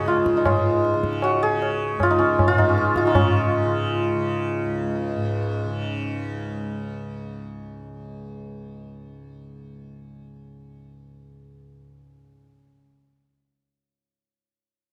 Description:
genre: indian classical, Hindustani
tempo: 156 BPM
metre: 7/4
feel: straight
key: Db raga khamaj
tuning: A4 = 441 Hz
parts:
  - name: santur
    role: melody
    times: 0.0-7.0 s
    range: Db4 to Cb5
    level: -24 LUFS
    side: equal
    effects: none
  - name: tanpura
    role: drone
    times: 0.0-12.8 s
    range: Db2 to Db3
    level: -31 LUFS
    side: equal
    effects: none
  - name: tabla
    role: percussion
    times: 0.1-3.3 s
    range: none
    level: -27 LUFS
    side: equal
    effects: none
room: moderate recital hall reverb, RT60 1.5 s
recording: dark, warm production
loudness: -22 LUFS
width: mono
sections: 0.0-3.2 A section; 3.2-5.8 B section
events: speeding up 0.0-5.8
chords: none

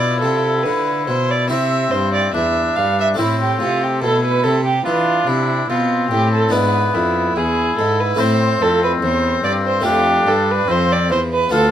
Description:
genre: classical, baroque-style sonata movement with continuo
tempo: 72 BPM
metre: 4/4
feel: straight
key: unclear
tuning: A4 = 441 Hz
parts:
  - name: warm oboe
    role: melody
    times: 0.0-11.7 s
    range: B3 to F4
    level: -21 LUFS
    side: left 7 dB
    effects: none
  - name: warm violin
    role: second line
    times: 0.0-11.7 s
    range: E4 to F5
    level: -18 LUFS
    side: right 4 dB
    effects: none
  - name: harpsichord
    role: accompaniment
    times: 0.0-11.7 s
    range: D2 to F4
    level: -22 LUFS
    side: left 1 dB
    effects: none
  - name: rich cello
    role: bass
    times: 0.0-11.7 s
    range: D2 to E3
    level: -22 LUFS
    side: equal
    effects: none
room: light reverb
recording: none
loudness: -14 LUFS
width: side -10 dB against mid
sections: 0.0-11.7 A section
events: none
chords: 0.0 Dm13/B; 1.5 C; 3.2 Am; 6.5 E7; 8.2 Am

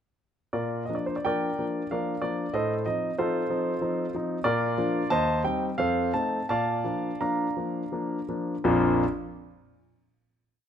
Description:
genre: classical-period piano sonatina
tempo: 82-94 BPM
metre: 3/4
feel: rubato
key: Bb major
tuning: A4 = 439 Hz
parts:
  - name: warm concert grand piano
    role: solo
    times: 0.5-9.0 s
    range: Bb1 to Bb5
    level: -25 LUFS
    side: equal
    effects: none
room: moderate recital hall reverb, RT60 1.3 s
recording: close, detailed microphones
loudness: -25 LUFS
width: side -8 dB against mid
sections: 0.5-8.6 A section; 8.6-10.7 final chord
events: slowing down 3.5-8.6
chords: 0.5 Bb; 2.5 F7/A; 4.5 Bb; 5.1 Cm/Eb; 5.8 F7; 6.5 Bb

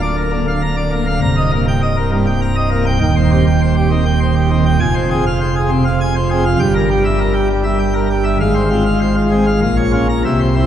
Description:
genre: classical, organ toccata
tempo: 100 BPM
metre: 3/4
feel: straight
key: F minor from 4.8 s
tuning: A4 = 440 Hz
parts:
  - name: pipe organ, plenum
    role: solo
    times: 0.0-10.7 s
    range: C1 to Bb5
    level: -13 LUFS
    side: right 1 dB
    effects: none
room: wet church reverb, RT60 3.2 s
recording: heard from further back in the room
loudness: -13 LUFS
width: side -10 dB against mid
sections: 0.0-10.7 A section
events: none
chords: 0.0 Bb/D; 1.2 Cm7; 3.0 Cm/Eb; 4.8 Fm; 6.6 Edim/G; 8.4 Fm/Ab; 9.6 Bbm

